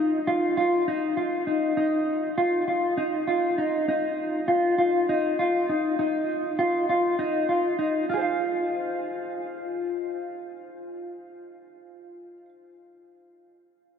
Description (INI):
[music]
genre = progressive instrumental, progressive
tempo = 200 BPM (eighths)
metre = 7/8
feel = straight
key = unclear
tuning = A4 = 440 Hz
[part]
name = mellow electric guitar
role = solo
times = 0.0-12.5 s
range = Eb4 to F5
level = -23 LUFS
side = equal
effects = lush chorus, diffuse ambient delay
[sound]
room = wet huge ambient reverb, RT60 7.1 s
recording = dreamy mix soaked in reverb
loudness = -23 LUFS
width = side -7 dB against mid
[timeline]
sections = 0.0-8.1 A section; 8.1-12.3 B section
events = none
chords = 0.0 Ebsus2; 8.1 F5